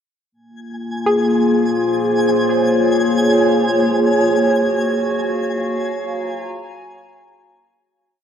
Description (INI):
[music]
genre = ambient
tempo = free time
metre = none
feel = none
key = Gb lydian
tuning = A4 = 440 Hz
[part]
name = warbly tape-like pad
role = sustained chords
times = 0.7-8.0 s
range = Bb3 to Bb5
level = -16 LUFS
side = equal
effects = chorus, built-in reverb
[part]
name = twinkling granular texture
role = texture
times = 0.7-8.0 s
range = Ab5 to Ab6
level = -26 LUFS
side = equal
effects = built-in reverb
[part]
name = soft round pluck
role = arpeggios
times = 1.1-4.1 s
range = Ab4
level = -24 LUFS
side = left 1 dB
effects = chorus, cassette tape, tape echo
[sound]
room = wet huge ambient reverb, RT60 7.9 s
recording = worn, warbling old tape, cassette tape, warbly pitch drift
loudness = -14 LUFS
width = side -8 dB against mid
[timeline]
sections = 0.3-8.0 A section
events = fade-out 4.2-8.0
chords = 0.3 Bbm7; 4.2 Gbmaj9